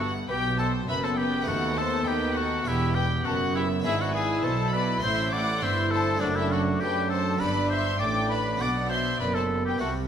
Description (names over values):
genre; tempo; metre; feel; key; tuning
classical, baroque-style concerto movement with solo episodes; 101 BPM; 4/4; straight; unclear; A4 = 440 Hz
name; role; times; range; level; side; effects
clear oboe; melody; 0.0-9.9 s; D4 to D5; -29 LUFS; left 2 dB; none
rich chamber violin section; melody; 0.0-9.9 s; D5 to D6; -32 LUFS; left 4 dB; none
rich chamber violin section; second line; 0.0-9.9 s; F#4 to G5; -34 LUFS; equal; none
dark chamber viola section; accompaniment; 0.0-10.1 s; G3 to E4; -32 LUFS; left 2 dB; none
harpsichord; accompaniment; 0.0-10.1 s; D#2 to G4; -34 LUFS; right 1 dB; none
rich chamber double bass section; bass; 0.0-10.1 s; E1 to F#2; -31 LUFS; right 3 dB; none
warm chamber cello section; bass; 0.0-10.1 s; D#2 to F#3; -32 LUFS; right 3 dB; none
room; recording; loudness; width
wet recital hall reverb, RT60 1.7 s; none; -23 LUFS; side -8 dB against mid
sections
0.0-10.1 A section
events
none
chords
0.0 Em; 1.5 B7/D#; 2.7 Em; 3.8 E7/G#; 5.0 Am; 6.2 D7/F#; 7.4 G; 8.6 Bm